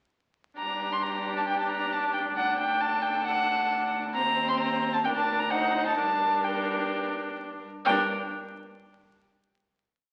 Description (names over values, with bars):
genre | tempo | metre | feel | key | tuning
quick classical-period movement for string quartet | 125-136 BPM | 4/4 | straight | G minor | A4 = 441 Hz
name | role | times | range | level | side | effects
warm violin | melody | 0.6-8.1 s | F#5 to C6 | -30 LUFS | equal | none
rich violin | second line | 0.6-8.1 s | G4 to C5 | -39 LUFS | equal | none
rich viola | accompaniment | 0.6-8.1 s | C4 to Eb4 | -33 LUFS | equal | none
warm cello | bass | 0.6-8.1 s | D2 to G2 | -39 LUFS | equal | none
room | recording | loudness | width
wet recital hall reverb, RT60 1.5 s | very old 78 rpm record, vinyl crackle | -27 LUFS | mono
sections
0.6-7.9 theme; 7.9-9.7 final chord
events
none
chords
0.6 G5; 2.4 D; 4.2 Cm/Eb; 5.1 Gmadd9/D (rootless); 5.5 D7b9; 6.0 Gm; 7.9 G5